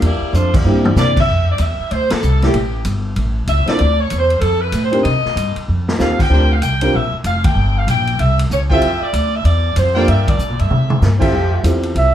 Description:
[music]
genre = jazz, big band swing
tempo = 191 BPM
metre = 4/4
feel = swing 63% on 8ths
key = F major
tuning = A4 = 441 Hz
[part]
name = dark baby grand piano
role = accompaniment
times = 0.0-12.1 s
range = A3 to Bb4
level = -19 LUFS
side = right 1 dB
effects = none
[part]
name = upright bass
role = bass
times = 0.0-12.1 s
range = F1 to D3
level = -16 LUFS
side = equal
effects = none
[part]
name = swinging big-band drum kit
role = drums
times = 0.0-12.0 s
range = crash cymbal, hi-hat, kick drum, ride cymbal, snare drum, toms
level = -22 LUFS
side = equal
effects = none
[part]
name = warm saxophone section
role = melody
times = 0.1-11.0 s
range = A3 to G5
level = -19 LUFS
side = equal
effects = none
[part]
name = warm trumpet section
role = stabs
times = 6.3-6.4, 8.7-11.6 s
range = D4 to G5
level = -22 LUFS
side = equal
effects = none
[part]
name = bright trombone section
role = sustained chords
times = 11.3-11.8 s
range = F3 to G4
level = -24 LUFS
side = left 1 dB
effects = none
[part]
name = mellow trumpet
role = melody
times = 12.0-12.1 s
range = E5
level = -13 LUFS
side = right 4 dB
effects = none
[sound]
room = wet club reverb, RT60 0.5 s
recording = heard from further back in the room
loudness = -13 LUFS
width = side -11 dB against mid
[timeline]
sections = 0.0-1.3 A section; 1.3-11.3 B section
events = drum fill 0.3-1.0, 5.7-6.0, 10.7-11.0; band accent 0.5, 2.1, 7.4, 10.2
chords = 0.0 Em7b5; 0.7 C9; 1.3 Fmaj9; 2.5 A7; 3.8 Dm9; 5.1 Cm; 5.7 F9; 6.3 Bb69; 7.6 Gm; 8.2 C; 8.8 Fmaj9; 10.1 Gm7; 10.7 Fmaj9

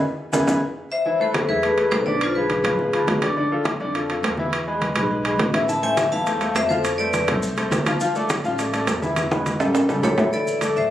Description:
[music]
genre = latin, salsa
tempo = 207 BPM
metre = 4/4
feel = straight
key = A harmonic minor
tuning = A4 = 439 Hz
[part]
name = bright grand piano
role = accompaniment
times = 0.3-10.9 s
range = D3 to F5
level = -24 LUFS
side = left 1 dB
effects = none
[part]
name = upright bass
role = bass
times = 0.3-10.9 s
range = E1 to F2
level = -30 LUFS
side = equal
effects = none
[part]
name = congas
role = percussion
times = 0.3-10.9 s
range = none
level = -27 LUFS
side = left 1 dB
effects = none
[part]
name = maracas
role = percussion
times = 0.3-0.5, 5.7-10.9 s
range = none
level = -36 LUFS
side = left 1 dB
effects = none
[part]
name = timbales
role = percussion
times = 0.3-10.8 s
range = none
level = -25 LUFS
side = right 2 dB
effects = none
[part]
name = vibraphone with hard mallets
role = melody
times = 0.9-3.2, 5.7-7.3, 10.0-10.9 s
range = F4 to A5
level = -21 LUFS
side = left 2 dB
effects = none
[sound]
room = moderate large studio reverb, RT60 1.2 s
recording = recorded on a phone in the room, club reverb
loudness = -19 LUFS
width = side -12 dB against mid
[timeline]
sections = 0.0-1.1 A section; 1.1-10.3 A section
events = band accent 0.0-1.1; drum fill 0.5-1.1, 9.2-10.3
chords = 0.0 E; 1.1 Amadd9; 2.2 Bdim; 3.4 Dm; 4.5 E; 5.7 Am; 6.8 F6; 8.0 Dmadd9; 9.2 E; 9.7 A7; 10.3 Dsus2

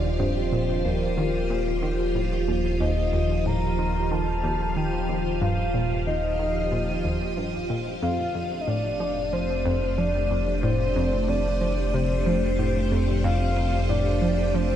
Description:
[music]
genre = ambient, sequencer-driven space music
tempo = 92 BPM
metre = 4/4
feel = straight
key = unclear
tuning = A4 = 439 Hz
[part]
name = soft octave-layered synth lead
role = melody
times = 0.0-14.8 s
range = Bb4 to Bb5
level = -29 LUFS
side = left 1 dB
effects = chorus, tremolo, tape echo
[part]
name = string machine, full ensemble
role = sustained chords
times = 0.0-14.8 s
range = F3 to F5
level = -28 LUFS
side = equal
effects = phaser, ensemble chorus
[part]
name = analog pluck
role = riff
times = 0.0-14.8 s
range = Eb2 to F3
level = -28 LUFS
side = right 1 dB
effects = chorus, tape echo
[part]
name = round analog bass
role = bass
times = 0.0-14.8 s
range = Eb1 to F1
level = -28 LUFS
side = equal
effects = none
[part]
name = bubbling stepped-filter texture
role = texture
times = 0.0-14.8 s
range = Eb7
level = -41 LUFS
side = right 4 dB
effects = chorus, built-in reverb
[sound]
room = moderate huge ambient reverb, RT60 8.0 s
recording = dark, warm production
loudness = -22 LUFS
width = side -10 dB against mid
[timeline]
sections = 0.0-14.8 A section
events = none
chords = 0.0 Eb; 8.0 F

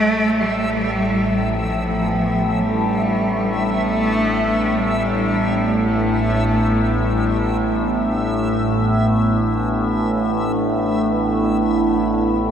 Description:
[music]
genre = dark ambient drone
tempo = free time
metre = none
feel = none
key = unclear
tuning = A4 = 440 Hz
[part]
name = rich cello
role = melody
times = 0.0-8.1 s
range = F3 to A3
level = -21 LUFS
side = equal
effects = shimmer reverb, tape echo
[part]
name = sweeping resonant pad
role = sustained chords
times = 0.0-12.5 s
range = A3 to E4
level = -23 LUFS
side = equal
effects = chorus, phaser, shimmer reverb
[part]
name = overtone-sweeping drone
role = drone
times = 0.0-12.5 s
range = A1 to A2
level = -20 LUFS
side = equal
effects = chorus, built-in reverb, phaser
[part]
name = backwards swelling texture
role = texture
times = 0.2-12.5 s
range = E5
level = -28 LUFS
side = equal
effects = built-in reverb, shimmer reverb
[sound]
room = wet huge ambient reverb, RT60 7.2 s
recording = in a vast, echoing space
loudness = -16 LUFS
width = side -8 dB against mid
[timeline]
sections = 0.0-12.5 A section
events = fade-out on synth texture 0.0-12.5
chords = 0.0 Asus2

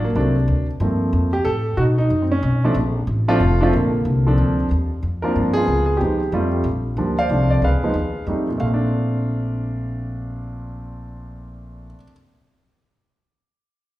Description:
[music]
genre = jazz piano trio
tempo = 185 BPM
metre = 3/4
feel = swing 64% on 8ths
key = Bb major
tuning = A4 = 440 Hz
[part]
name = warm concert grand piano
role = melody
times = 0.0-12.1 s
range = Bb2 to F5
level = -20 LUFS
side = right 1 dB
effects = none
[part]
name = upright bass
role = bass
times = 0.0-11.9 s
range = F1 to B2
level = -21 LUFS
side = equal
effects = none
[sound]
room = wet recital hall reverb, RT60 1.3 s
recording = recorded in a church or concert hall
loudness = -17 LUFS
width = side -15 dB against mid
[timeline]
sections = 0.0-4.7 A section; 4.7-8.6 B section; 8.6-10.5 C section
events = none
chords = 0.0 D7b13; 0.8 Gm11; 1.8 Badd9; 2.8 Bbmaj9; 4.7 Ebsus2; 5.3 G7sus4; 5.7 Db7; 6.3 Fadd9; 6.6 Bb6; 7.3 F6/C; 7.6 Db7; 8.3 F9; 8.6 Bbmaj9

